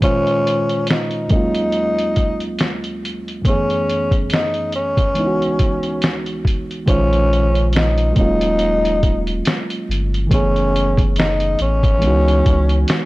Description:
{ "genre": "lo-fi hip hop", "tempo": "70 BPM", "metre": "4/4", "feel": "swing 56% on 16ths", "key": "Bb minor", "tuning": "A4 = 440 Hz", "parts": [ { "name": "growling tenor saxophone", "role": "melody", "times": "0.0-13.1 s", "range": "Db4 to Eb4", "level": "-20 LUFS", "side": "left 1 dB", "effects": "tape echo" }, { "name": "bright reed electric piano", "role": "accompaniment", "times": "0.0-13.1 s", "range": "Db2 to C5", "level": "-21 LUFS", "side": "right 2 dB", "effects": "cassette tape" }, { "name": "lo-fi sampler-style drum kit", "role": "drums", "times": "0.0-13.1 s", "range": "hi-hat, kick drum, snare drum", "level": "-19 LUFS", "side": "equal", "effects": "none" }, { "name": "warm sub bass", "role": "bass", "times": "6.9-12.8 s", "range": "Eb1 to Db2", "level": "-18 LUFS", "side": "equal", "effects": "none" } ], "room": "digital ambience", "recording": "dry, gritty hardware recording, cassette tape", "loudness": "-15 LUFS", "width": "side -19 dB against mid", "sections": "0.0-6.9 A section; 6.9-13.1 B section", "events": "none", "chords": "0.0 Bbm11; 1.3 Ebm11; 3.5 Gbm11; 5.2 Dbm11; 6.9 Bbm11; 8.2 Ebm11; 10.3 Gbm11; 12.0 Dbm11", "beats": "| 0.02 0.88 1.74 2.59 | 3.45 4.31 5.17 6.02 | 6.88 7.74 8.59 9.45 | 10.31 11.16 12.02 12.88" }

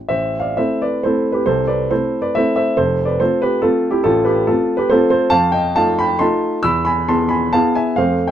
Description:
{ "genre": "classical, romantic triple-time dance for piano with dotted rhythms", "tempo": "121-149 BPM", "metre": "3/4", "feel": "rubato", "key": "A minor", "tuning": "A4 = 441 Hz", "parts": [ { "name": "warm grand piano", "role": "solo", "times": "0.1-8.3 s", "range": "F1 to E6", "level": "-14 LUFS", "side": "equal", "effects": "none" } ], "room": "light reverb", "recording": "dark, warm production", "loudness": "-14 LUFS", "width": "side -10 dB against mid", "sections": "0.1-8.3 A section", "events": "none", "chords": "0.1 Am; 1.5 Am/C; 2.8 F; 4.1 F/A; 5.3 F7; 6.6 E", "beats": "| 0.10 0.58 1.04 | 1.46 1.91 2.35 | 2.77 3.20 3.64 | 4.06 4.49 4.93 | 5.33 5.78 6.22 | 6.64 7.07 7.53 | 7.97" }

